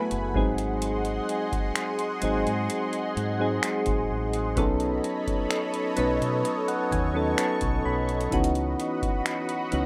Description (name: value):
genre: contemporary R&B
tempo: 64 BPM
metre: 4/4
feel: straight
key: unclear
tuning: A4 = 440 Hz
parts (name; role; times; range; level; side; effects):
- soft electric-piano-like synth keys; accompaniment; 0.0-9.9 s; E3 to B5; -29 LUFS; equal; chorus, tremolo
- lush unison pad; sustained chords; 0.0-9.9 s; A3 to C#6; -34 LUFS; equal; chorus, phaser
- deep dub fingered electric bass; bass; 0.1-9.9 s; F#1 to B2; -33 LUFS; equal; none
- booming analog drum machine; drums; 0.1-9.9 s; finger snaps, hi-hat, kick drum; -32 LUFS; equal; none
room: light reverb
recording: rough home demo mix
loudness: -27 LUFS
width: mono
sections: 0.0-9.9 A section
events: synth keys fill 5.5-8.3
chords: 0.4 G#7; 4.6 B9; 8.3 C#m11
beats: | 0.82 1.76 2.70 3.63 | 4.57 5.51 6.45 7.38 | 8.32 9.26